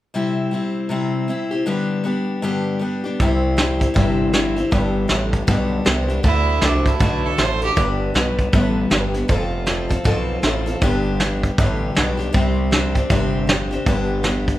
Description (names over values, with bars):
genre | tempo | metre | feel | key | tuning
honky-tonk and classic country | 158 BPM | 4/4 | swing 61% on 8ths | C major | A4 = 440 Hz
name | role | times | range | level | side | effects
picked steel-string acoustic guitar | accompaniment | 0.1-14.6 s | G2 to B4 | -21 LUFS | left 2 dB | none
gritty driven synth bass | bass | 3.2-14.5 s | F1 to D2 | -22 LUFS | equal | distortion
soft brush drum kit | drums | 3.2-14.5 s | hi-hat, kick drum, snare drum | -20 LUFS | equal | none
clear fiddle | second line | 6.3-7.8 s | D4 to C5 | -22 LUFS | right 4 dB | none
room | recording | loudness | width
moderate recital hall reverb, RT60 1.5 s | recorded in a church or concert hall | -17 LUFS | side -14 dB against mid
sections
0.2-3.2 A section; 3.2-14.6 B section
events
none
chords
0.2 C; 1.7 G; 3.2 C; 4.7 G; 6.3 D; 7.8 G; 9.3 F; 10.8 G; 12.3 Csus2; 13.9 G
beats
| 0.15 0.54 0.92 1.30 | 1.68 2.06 2.44 2.82 | 3.20 3.58 3.97 4.35 | 4.73 5.11 5.49 5.87 | 6.25 6.63 7.01 7.39 | 7.78 8.15 8.54 8.92 | 9.30 9.68 10.06 10.44 | 10.82 11.20 11.58 11.96 | 12.35 12.73 13.11 13.49 | 13.87 14.25